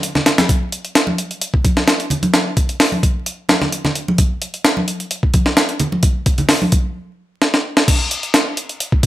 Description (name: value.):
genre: breakbeat.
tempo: 130 BPM.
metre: 4/4.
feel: straight.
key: none.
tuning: none.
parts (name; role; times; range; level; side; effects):
breakbeat sampler-style drum kit; drums; 0.0-9.1 s; crash cymbal, hi-hat, kick drum, snare drum; -14 LUFS; equal; small room ambience.
congas; percussion; 0.2-6.7 s; none; -22 LUFS; right 1 dB; none.
room: light reverb, digital ambience.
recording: vinyl crackle.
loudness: -14 LUFS.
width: side -14 dB against mid.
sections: 0.0-7.9 A section; 7.9-9.1 B section.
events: stop 7.0-7.9; drum fill 7.4-7.9; drop 7.9-9.1.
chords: none.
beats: 0.03 | 0.49 0.96 1.42 1.88 | 2.34 2.80 3.26 3.73 | 4.19 4.65 5.11 5.57 | 6.03 6.50 6.96 7.42 | 7.88 8.34 8.80.